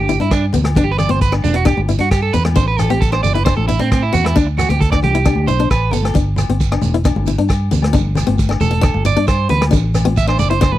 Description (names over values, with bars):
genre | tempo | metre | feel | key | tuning
highlife guitar band | 134 BPM | 4/4 | straight | G major | A4 = 440 Hz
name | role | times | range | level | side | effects
electric guitar at the edge of break-up | arpeggios | 0.0-10.8 s | C4 to E5 | -19 LUFS | right 6 dB | warbly pitch drift, slapback echo
fingered electric bass | bass | 0.0-10.8 s | E1 to A2 | -17 LUFS | equal | none
picked swing-style acoustic guitar | accompaniment | 0.1-10.7 s | B3 to E4 | -21 LUFS | left 7 dB | none
vintage drum kit | drums | 0.1-10.7 s | hi-hat, kick drum, rim click | -18 LUFS | equal | none
shekere | percussion | 0.1-10.7 s | none | -27 LUFS | right 6 dB | none
agogo bells | percussion | 0.3-10.7 s | none | -30 LUFS | left 18 dB | none
congas | percussion | 0.5-10.8 s | none | -23 LUFS | left 4 dB | none
room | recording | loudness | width
little or no reverb | dry, close 1970s-style studio recording | -13 LUFS | side -14 dB against mid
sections
0.0-10.8 A section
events
clean electric guitar solo 0.0-10.8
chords
0.0 G; 2.6 Am; 4.4 Dsus4; 6.2 G5; 9.7 Am